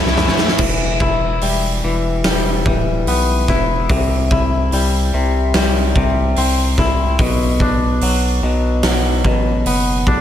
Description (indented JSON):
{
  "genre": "post-rock",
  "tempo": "73 BPM",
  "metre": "4/4",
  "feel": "straight",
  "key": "E minor",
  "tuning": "A4 = 441 Hz",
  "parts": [
    { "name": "twangy electric guitar", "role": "arpeggios", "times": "0.0-10.2 s", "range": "B2 to E4", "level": "-18 LUFS", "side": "left 2 dB", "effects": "spring reverb, analog delay" },
    { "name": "sludgy distorted guitar", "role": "riff", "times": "0.0-0.6 s", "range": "A3 to E4", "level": "-20 LUFS", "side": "right 2 dB", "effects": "overdrive" },
    { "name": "round analog bass", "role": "bass", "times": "0.0-10.2 s", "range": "D1 to C2", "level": "-19 LUFS", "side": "equal", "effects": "none" },
    { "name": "huge arena drum kit", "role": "drums", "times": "0.1-10.2 s", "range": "crash cymbal, hi-hat, kick drum, snare drum, toms", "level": "-19 LUFS", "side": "equal", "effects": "none" }
  ],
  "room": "light reverb, small room ambience",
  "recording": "none",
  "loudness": "-14 LUFS",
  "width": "side -10 dB against mid",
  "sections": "0.6-10.2 A section",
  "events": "drum fill 0.0-0.6",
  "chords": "0.0 Am/C; 0.6 Em; 3.9 C; 7.2 Bm",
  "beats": "| 0.60 1.43 2.25 3.07 | 3.90 4.72 5.55 6.37 | 7.19 8.02 8.84 9.66"
}